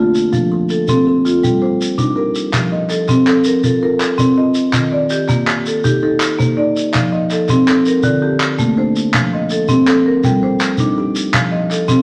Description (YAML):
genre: southern african traditional, mbira-style interlocking cycle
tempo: 109 BPM (dotted quarters)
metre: 12/8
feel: straight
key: F mixolydian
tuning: A4 = 440 Hz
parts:
  - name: kalimba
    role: arpeggios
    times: 0.0-12.0 s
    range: D3 to D5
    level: -24 LUFS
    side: equal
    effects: none
  - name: marimba with medium hard mallets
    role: arpeggios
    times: 0.0-12.0 s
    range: D3 to Eb5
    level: -17 LUFS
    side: equal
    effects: none
  - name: shekere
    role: percussion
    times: 0.1-12.0 s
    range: none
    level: -23 LUFS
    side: equal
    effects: none
  - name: group handclap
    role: percussion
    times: 2.5-12.0 s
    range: none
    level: -23 LUFS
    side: equal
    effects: none
room: wet large studio reverb, RT60 1.0 s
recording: none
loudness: -15 LUFS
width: mono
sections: 0.0-2.5 A section; 2.5-12.0 B section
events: none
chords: 0.3 F; 1.4 Gm; 2.5 F; 4.7 Eb; 6.9 F; 8.0 Dm; 9.1 F; 10.2 Gm; 11.3 F